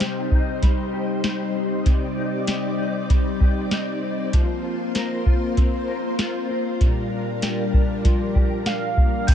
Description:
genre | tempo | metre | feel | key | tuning
dream pop | 97 BPM | 4/4 | straight | C minor | A4 = 440 Hz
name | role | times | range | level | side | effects
ensemble organ-string | sustained chords | 0.0-9.3 s | G3 to D5 | -25 LUFS | left 1 dB | ensemble chorus, shimmer reverb
mellow electric guitar | arpeggios | 0.0-9.3 s | Bb2 to Bb4 | -29 LUFS | left 4 dB | ensemble chorus, dub echo, shimmer reverb
soft vintage rhythm box | drums | 0.0-9.3 s | crash cymbal, hi-hat, kick drum, snare drum | -19 LUFS | equal | none
warm velvety synth lead | melody | 8.7-9.3 s | F5 to G5 | -31 LUFS | right 6 dB | chorus, dub echo, shimmer reverb
electric guitar at the edge of break-up | accompaniment | 9.3 s | C3 to Eb4 | -45 LUFS | equal | none
worn celesta | texture | 9.3 s | none | barely audible | none | none
room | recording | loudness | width
light reverb | echo-heavy mix | -20 LUFS | side -9 dB against mid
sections
0.0-9.3 A section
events
none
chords
0.0 Cm; 4.3 Fsus4; 6.8 Bb6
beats
0.00 0.62 1.24 | 1.86 2.48 3.10 3.71 | 4.33 4.95 5.57 6.19 | 6.81 7.42 8.04 8.66 | 9.28

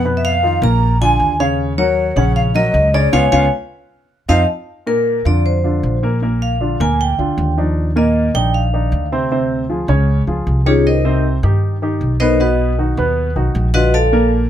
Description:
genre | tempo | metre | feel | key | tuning
jazz | 155 BPM | 4/4 | straight | Bb major from 4.7 s | A4 = 440 Hz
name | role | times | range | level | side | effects
vibraphone with medium hard mallets | melody | 0.0-14.3 s | Db4 to A#5 | -18 LUFS | equal | none
breathy mellow jazz flute | second line | 0.0-4.4 s | C#5 to A#5 | -21 LUFS | left 2 dB | none
dark baby grand piano | accompaniment | 0.0-14.4 s | A#2 to C#5 | -19 LUFS | equal | none
upright bass | bass | 0.0-14.4 s | A#1 to G2 | -16 LUFS | equal | none
room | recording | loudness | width
little or no reverb | close, detailed microphones | -13 LUFS | side -10 dB against mid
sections
0.0-4.7 A section; 4.7-14.5 B section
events
band accent 3.1-4.7; vibraphone solo 4.7-14.5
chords
0.0 Bmaj7#11; 0.8 A#7; 1.6 D#m7; 3.1 C#7; 3.9 F7(no3); 4.7 Bbadd9; 6.2 Bb; 7.8 Ebsus2; 9.3 Dm7b5; 10.1 Dbadd9; 10.9 Cm7; 12.4 B; 13.9 Bbmaj7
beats
| 0.05 0.43 0.82 1.20 | 1.59 1.98 2.36 2.75 | 3.13 3.52 3.91 4.29 | 4.68 5.07 5.45 5.84 | 6.22 6.61 7.00 7.38 | 7.77 8.16 8.54 8.93 | 9.31 9.70 10.09 10.47 | 10.86 11.24 11.63 12.01 | 12.39 12.78 13.16 13.55 | 13.93 14.32

